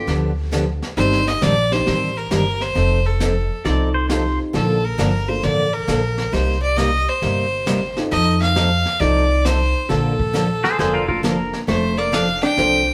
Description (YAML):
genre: country, western swing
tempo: 134 BPM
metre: 4/4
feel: swing 66% on 8ths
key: Bb major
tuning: A4 = 440 Hz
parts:
  - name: bright fiddle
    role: melody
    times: 0.0-12.9 s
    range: A4 to G5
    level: -23 LUFS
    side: equal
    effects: none
  - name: dark upright piano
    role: accompaniment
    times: 0.0-12.8 s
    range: Bb3 to C5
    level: -28 LUFS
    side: equal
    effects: none
  - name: picked steel-string acoustic guitar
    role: accompaniment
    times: 0.1-12.8 s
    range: C3 to A4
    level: -26 LUFS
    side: equal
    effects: none
  - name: upright bass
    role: bass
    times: 0.1-12.9 s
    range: F1 to F2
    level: -24 LUFS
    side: equal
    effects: none
  - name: vintage brush drum kit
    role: drums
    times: 0.1-12.9 s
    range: brushed snare drum, hi-hat, kick drum, snare drum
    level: -30 LUFS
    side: equal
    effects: none
  - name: pedal steel guitar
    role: second line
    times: 3.7-4.4, 10.6-11.6 s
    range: F4 to D5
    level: -25 LUFS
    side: equal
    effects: none
  - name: archtop guitar, miked and amplified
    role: second line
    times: 11.7-12.9 s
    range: A3 to D4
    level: -24 LUFS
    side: equal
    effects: none
room: moderate stone room reverb, RT60 1.0 s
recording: band playing live in one room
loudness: -19 LUFS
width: mono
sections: 0.0-12.9 A section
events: none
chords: 0.0 G7; 1.0 Cmadd9/G; 2.8 F7; 4.5 Bbmaj7; 6.3 Cm7; 8.1 F7; 9.9 Bbmaj7; 11.7 F6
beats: 0.08 0.52 | 0.97 1.42 1.86 2.31 | 2.76 3.21 3.65 4.10 | 4.54 4.99 5.44 5.88 | 6.33 6.78 7.22 7.67 | 8.12 8.56 9.01 9.45 | 9.90 10.35 10.79 11.24 | 11.68 12.13 12.58